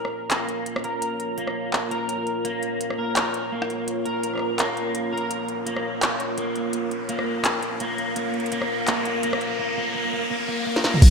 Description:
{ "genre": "half-time drum and bass", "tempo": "168 BPM", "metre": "4/4", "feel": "swing 55% on 16ths, half-time", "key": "Bb minor", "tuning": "A4 = 440 Hz", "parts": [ { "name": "deep dark ambient pad", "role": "sustained chords", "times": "0.0-11.1 s", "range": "Bb3 to Db5", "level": "-30 LUFS", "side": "equal", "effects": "chorus, built-in reverb, sidechain pumping" }, { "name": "electric guitar at the edge of break-up", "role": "arpeggios", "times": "0.0-11.0 s", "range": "Bb3 to Bb4", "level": "-27 LUFS", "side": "equal", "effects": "analog chorus, low-pass filter, diffuse ambient delay" }, { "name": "industrial drum kit", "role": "drums", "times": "0.0-11.1 s", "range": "crash cymbal, handclaps, hi-hat, rim click, snare drum, toms", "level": "-26 LUFS", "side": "equal", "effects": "none" }, { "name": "riser", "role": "sound effects", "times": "1.6-11.0 s", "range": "none", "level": "-34 LUFS", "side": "equal", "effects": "none" }, { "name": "long sustained 808-style bass", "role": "bass", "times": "11.0-11.1 s", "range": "Bb1", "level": "-8 LUFS", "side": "equal", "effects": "none" }, { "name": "electronic kick drum", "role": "drums", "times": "11.0-11.1 s", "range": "none", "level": "-24 LUFS", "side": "right 1 dB", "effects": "none" } ], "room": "wet lush hall reverb, RT60 1.8 s", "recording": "dreamy mix soaked in reverb", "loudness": "-23 LUFS", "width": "side -6 dB against mid", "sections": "0.0-11.0 A section", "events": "build-up 0.0-11.0; riser 1.6-11.0; drum fill 10.8", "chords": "0.0 Bbm" }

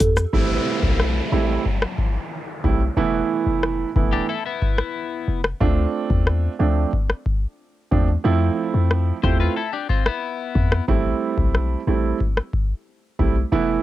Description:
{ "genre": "dancehall", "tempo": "91 BPM", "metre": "4/4", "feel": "straight", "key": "A minor", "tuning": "A4 = 440 Hz", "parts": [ { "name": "warm 808-style bass", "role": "bass", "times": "0.0-13.8 s", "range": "E1 to F2", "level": "-21 LUFS", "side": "left 1 dB", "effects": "none" }, { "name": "booming analog drum machine", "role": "drums", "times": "0.0-13.4 s", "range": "hi-hat, kick drum, rim click, shaker", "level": "-20 LUFS", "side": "left 1 dB", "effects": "none" }, { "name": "warm baby grand piano", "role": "accompaniment", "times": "0.3-13.8 s", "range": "E3 to F4", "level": "-22 LUFS", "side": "right 7 dB", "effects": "cassette tape, plate reverb" }, { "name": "downlifter", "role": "sound effects", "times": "0.3-5.6 s", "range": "none", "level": "-30 LUFS", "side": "left 2 dB", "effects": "none" }, { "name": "twelve-string electric guitar", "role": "arpeggios", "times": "4.1-10.8 s", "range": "B3 to C5", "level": "-26 LUFS", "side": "left 8 dB", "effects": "cassette tape" } ], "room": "light reverb", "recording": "home recording on cassette", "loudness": "-19 LUFS", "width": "side -14 dB against mid", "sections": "0.3-13.8 A section", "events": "none", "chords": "0.3 Am7; 3.0 Esus4; 5.6 Dm7; 8.2 Fmaj7; 10.9 Am7" }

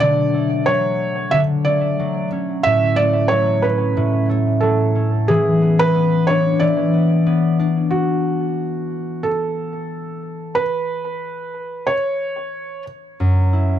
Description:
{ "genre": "folktronica", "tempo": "91 BPM", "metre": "4/4", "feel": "swing 56% on 16ths", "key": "D major", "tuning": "A4 = 438 Hz", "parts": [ { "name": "felt-muted upright piano", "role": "melody", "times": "0.0-12.8 s", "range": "F#4 to E5", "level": "-20 LUFS", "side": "right 3 dB", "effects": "tape echo" }, { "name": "concert harp", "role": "arpeggios", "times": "0.0-13.8 s", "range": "F#2 to E4", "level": "-18 LUFS", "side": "left 2 dB", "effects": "low-pass filter, tape echo" } ], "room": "light reverb", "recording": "dry, close 1970s-style studio recording", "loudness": "-16 LUFS", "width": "side -10 dB against mid", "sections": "0.0-7.9 A section; 7.9-13.8 B section", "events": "none", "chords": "0.0 Dmaj7; 2.7 A6; 5.3 E5; 7.9 N.C.; 13.2 F#7(no3)" }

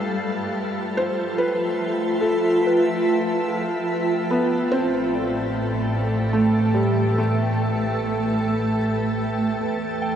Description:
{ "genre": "ambient", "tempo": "74 BPM", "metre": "3/4", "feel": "straight", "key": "A minor", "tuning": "A4 = 440 Hz", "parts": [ { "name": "felt-muted upright piano", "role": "melody", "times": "0.0-8.8 s", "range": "G3 to C5", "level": "-26 LUFS", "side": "equal", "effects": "tape echo" }, { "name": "granular cloud pad", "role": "sustained chords", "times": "0.0-10.2 s", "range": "A3 to A5", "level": "-23 LUFS", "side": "right 1 dB", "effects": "built-in reverb" }, { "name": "soft synth bell", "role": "arpeggios", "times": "0.0-10.2 s", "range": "B4 to G5", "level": "-34 LUFS", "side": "left 1 dB", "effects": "chorus, tape echo" }, { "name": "organ-like drone", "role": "drone", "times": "0.0-10.2 s", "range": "A3 to A4", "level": "-29 LUFS", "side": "left 1 dB", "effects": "ensemble chorus, built-in reverb" }, { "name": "warm studio double bass section", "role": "bass", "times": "4.7-10.2 s", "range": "A1 to E2", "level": "-26 LUFS", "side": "equal", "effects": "none" } ], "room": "wet shimmer reverb, RT60 7.7 s", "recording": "none", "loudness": "-20 LUFS", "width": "side -9 dB against mid", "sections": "0.0-4.7 A section; 4.7-10.2 A section", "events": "none", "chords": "0.0 Fmaj7; 4.7 Am7; 9.6 Em" }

